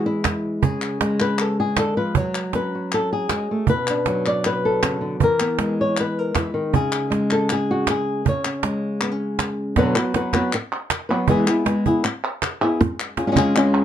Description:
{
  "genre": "flamenco",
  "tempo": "158 BPM",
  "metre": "4/4",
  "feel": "straight",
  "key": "unclear",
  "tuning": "A4 = 440 Hz",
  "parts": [
    { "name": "flamenco guitar", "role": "melody", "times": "0.0-13.8 s", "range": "B2 to D5", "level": "-20 LUFS", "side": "left 1 dB", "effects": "none" },
    { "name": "cajon", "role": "percussion", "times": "0.2-13.6 s", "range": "none", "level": "-22 LUFS", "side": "right 6 dB", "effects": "none" },
    { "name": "palmas hand claps", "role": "percussion", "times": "0.2-13.8 s", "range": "none", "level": "-26 LUFS", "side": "left 2 dB", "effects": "none" }
  ],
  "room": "moderate studio ambience, RT60 0.5 s",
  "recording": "dark, warm production",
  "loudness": "-19 LUFS",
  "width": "side -10 dB against mid",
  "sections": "0.0-9.8 A section; 9.8-13.8 B section",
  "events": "none",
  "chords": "0.0 E; 0.6 C#5; 2.2 F#madd9; 3.7 Bm; 5.2 E; 6.7 C#5; 9.8 B5; 11.3 E; 12.8 C#"
}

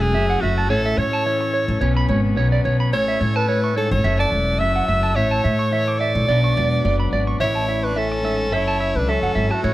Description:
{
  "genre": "highlife",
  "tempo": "108 BPM",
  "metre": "4/4",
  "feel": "swing 54% on 16ths",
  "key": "A major",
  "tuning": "A4 = 436 Hz",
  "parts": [
    { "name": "edgy alto saxophone", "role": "melody", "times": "0.0-9.7 s", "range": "F#4 to E5", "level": "-23 LUFS", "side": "equal", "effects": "none" },
    { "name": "electric guitar at the edge of break-up", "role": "accompaniment", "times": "0.0-9.7 s", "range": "F#2 to A4", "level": "-27 LUFS", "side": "left 5 dB", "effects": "none" },
    { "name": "combo organ", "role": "sustained chords", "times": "0.0-7.4 s", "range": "A3 to D5", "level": "-32 LUFS", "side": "left 1 dB", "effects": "spring reverb" },
    { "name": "upright bass", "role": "bass", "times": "0.0-9.7 s", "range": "E1 to A2", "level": "-21 LUFS", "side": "equal", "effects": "none" },
    { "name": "electric guitar at the edge of break-up", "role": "arpeggios", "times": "0.1-9.7 s", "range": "C#5 to D6", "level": "-24 LUFS", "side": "right 4 dB", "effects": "tape echo" },
    { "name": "edgy tenor saxophone", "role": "second line", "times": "7.4-9.7 s", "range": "A3 to E4", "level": "-28 LUFS", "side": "left 2 dB", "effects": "none" }
  ],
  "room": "light reverb, small room ambience",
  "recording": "none",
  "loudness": "-17 LUFS",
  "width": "side -16 dB against mid",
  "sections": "0.0-7.4 A section; 7.4-9.7 B section",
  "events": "none",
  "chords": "0.0 F#m7; 0.7 A; 1.8 Bsus2; 2.9 A; 4.1 F#m7; 5.2 A; 6.3 Bmadd9; 7.4 A; 8.5 F#m7"
}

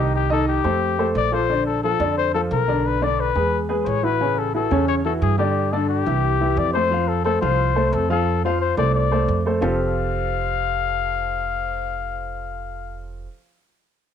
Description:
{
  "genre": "Afro-Cuban jazz",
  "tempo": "177 BPM",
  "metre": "4/4",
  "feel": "straight",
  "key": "F major",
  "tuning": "A4 = 439 Hz",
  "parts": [
    { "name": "breathy trumpet", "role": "melody", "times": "0.0-13.1 s", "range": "G4 to F5", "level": "-23 LUFS", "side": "left 9 dB", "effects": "none" },
    { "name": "warm baby grand piano", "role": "accompaniment", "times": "0.0-13.3 s", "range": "C#3 to F5", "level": "-23 LUFS", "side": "equal", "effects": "none" },
    { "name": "upright bass", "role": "bass", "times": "0.0-13.3 s", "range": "F1 to G2", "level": "-24 LUFS", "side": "right 3 dB", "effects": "none" }
  ],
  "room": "moderate spring reverb, RT60 1.2 s, small room ambience",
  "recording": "none",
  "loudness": "-18 LUFS",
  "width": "side -8 dB against mid",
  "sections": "0.0-9.6 A section; 9.6-12.3 B section",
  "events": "none",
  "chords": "0.0 Cm; 0.8 F; 1.5 Bbmaj7; 2.8 Bm; 3.5 Eadd9; 4.2 A6; 5.6 G5; 6.2 C; 6.9 F; 9.6 Fadd9"
}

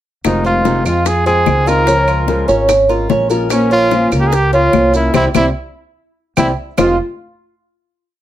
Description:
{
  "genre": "latin, Cuban son and guajira",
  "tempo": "147 BPM",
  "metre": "4/4",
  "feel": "straight",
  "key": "F minor",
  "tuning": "A4 = 439 Hz",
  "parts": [
    { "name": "fingerpicked steel-string acoustic guitar", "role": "accompaniment", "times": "0.2-6.9 s", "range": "F2 to Bb4", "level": "-18 LUFS", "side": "left 2 dB", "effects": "none" },
    { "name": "upright bass", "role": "bass", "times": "0.2-7.0 s", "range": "F1 to F2", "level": "-18 LUFS", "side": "equal", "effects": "none" },
    { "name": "bongos", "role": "percussion", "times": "0.2-6.9 s", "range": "none", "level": "-20 LUFS", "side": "left 8 dB", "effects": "none" },
    { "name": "claves", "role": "percussion", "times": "0.2-6.9 s", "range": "none", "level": "-27 LUFS", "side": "right 4 dB", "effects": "none" },
    { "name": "maracas", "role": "percussion", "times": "0.2-6.9 s", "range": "none", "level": "-30 LUFS", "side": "right 6 dB", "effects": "none" },
    { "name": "clear trumpet", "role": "melody", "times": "0.3-7.0 s", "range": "Db4 to Bb4", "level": "-16 LUFS", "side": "equal", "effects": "plate reverb" },
    { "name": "Cuban tres", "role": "arpeggios", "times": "0.4-7.0 s", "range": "C4 to Eb5", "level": "-16 LUFS", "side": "right 2 dB", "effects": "none" }
  ],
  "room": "moderate studio reverb, RT60 0.6 s",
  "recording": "none",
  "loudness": "-11 LUFS",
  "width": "side -12 dB against mid",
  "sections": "0.2-6.8 verse; 6.8-8.2 final chord",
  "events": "band accent 5.1-6.8; drum fill 6.0-6.8",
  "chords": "0.2 Fm7; 1.9 Db6; 3.5 Bbm; 5.1 C; 6.8 F7(no3)"
}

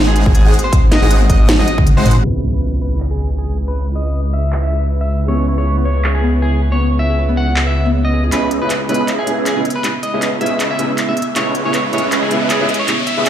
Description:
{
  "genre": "future bass",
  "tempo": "158 BPM",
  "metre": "4/4",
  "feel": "swing 56% on 16ths, half-time",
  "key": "C# minor",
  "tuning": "A4 = 440 Hz",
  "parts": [
    { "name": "Celtic harp", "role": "arpeggios", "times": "0.0-11.2 s", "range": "B3 to B#4", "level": "-24 LUFS", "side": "left 4 dB", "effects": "sidechain pumping, tape echo" },
    { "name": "supersaw chords", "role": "riff", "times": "0.0-2.2, 8.3-13.3 s", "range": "G#3 to G#5", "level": "-20 LUFS", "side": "right 1 dB", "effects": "ensemble chorus, sidechain pumping, low-pass filter" },
    { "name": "wide detuned saw bass", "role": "bass", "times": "0.0-13.3 s", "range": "G#1 to C#2", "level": "-17 LUFS", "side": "equal", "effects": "chorus, sidechain pumping, high-pass filter" },
    { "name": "clean electric guitar", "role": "melody", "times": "0.1-13.3 s", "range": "G#4 to F#5", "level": "-22 LUFS", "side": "equal", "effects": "sidechain pumping, tape echo" },
    { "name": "trap drum kit", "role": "drums", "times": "0.2-13.3 s", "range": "handclaps, hi-hat, snare drum, toms", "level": "-20 LUFS", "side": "equal", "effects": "none" },
    { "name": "electronic kick drum", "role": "drums", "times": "0.3-1.8 s", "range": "none", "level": "-11 LUFS", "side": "equal", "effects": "none" },
    { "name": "felt-muted upright piano", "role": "accompaniment", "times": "2.2-13.2 s", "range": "C#3 to E4", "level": "-24 LUFS", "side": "right 2 dB", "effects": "sidechain pumping" },
    { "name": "airy breathy pad", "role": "sustained chords", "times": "2.2-13.3 s", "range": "C#3 to B4", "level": "-26 LUFS", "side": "right 1 dB", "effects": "chorus, sidechain pumping" },
    { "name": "impact and riser", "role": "sound effects", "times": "2.2-3.8, 10.0-13.3 s", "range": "none", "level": "-23 LUFS", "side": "equal", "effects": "none" }
  ],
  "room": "light reverb, digital ambience",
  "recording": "played on a big sound system in a bare room, large studio reverb, low-pass filter",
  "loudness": "-13 LUFS",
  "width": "side -10 dB against mid",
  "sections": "0.0-2.2 A section; 2.2-8.3 B section; 8.3-13.3 C section",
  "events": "drop 0.0-2.2; drum fill 1.5-2.2, 8.3-13.3; impact 2.2-3.8; filter sweep on analog synth pad 2.2-8.3; filter sweep 2.2-8.3, 8.3-13.3; build-up 8.3-13.3; filter sweep on supersaw synth 8.3-13.3; riser 10.0-13.3",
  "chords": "0.0 G#7; 2.2 C#m7"
}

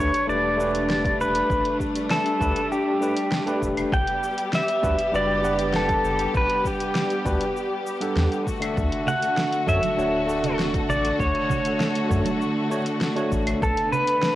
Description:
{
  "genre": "sunset chillout",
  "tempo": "99 BPM",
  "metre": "4/4",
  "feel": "straight",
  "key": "unclear",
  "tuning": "A4 = 440 Hz",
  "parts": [
    { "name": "pedal steel guitar", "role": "melody", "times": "0.0-14.4 s", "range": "G4 to G5", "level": "-24 LUFS", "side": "equal", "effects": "cassette tape, tape echo" },
    { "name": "overdriven tine electric piano", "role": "accompaniment", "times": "0.0-13.6 s", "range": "G3 to F#5", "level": "-28 LUFS", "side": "equal", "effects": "auto-pan, tape echo" },
    { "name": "rich studio string section", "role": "sustained chords", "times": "0.0-14.4 s", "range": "D3 to A4", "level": "-28 LUFS", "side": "left 1 dB", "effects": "none" },
    { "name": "round analog bass", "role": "bass", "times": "0.0-13.7 s", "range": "D1 to F#2", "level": "-28 LUFS", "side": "equal", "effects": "none" },
    { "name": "deep house drum kit", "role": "drums", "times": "0.0-14.4 s", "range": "claves, hi-hat, shaker, snare drum", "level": "-30 LUFS", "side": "equal", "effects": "overdrive, studio ambience" },
    { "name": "electronic kick drum", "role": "drums", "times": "1.0-13.7 s", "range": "none", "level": "-30 LUFS", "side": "equal", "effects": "overdrive, studio ambience" },
    { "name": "congas", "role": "percussion", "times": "9.1-14.0 s", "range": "none", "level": "-32 LUFS", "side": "right 6 dB", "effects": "none" }
  ],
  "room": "light reverb, digital ambience",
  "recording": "home recording on cassette",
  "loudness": "-21 LUFS",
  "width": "side -14 dB against mid",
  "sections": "0.0-14.4 A section",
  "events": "none",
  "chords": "0.0 A9sus4; 3.9 Gmaj7; 8.5 Dmaj7; 13.6 Bm7"
}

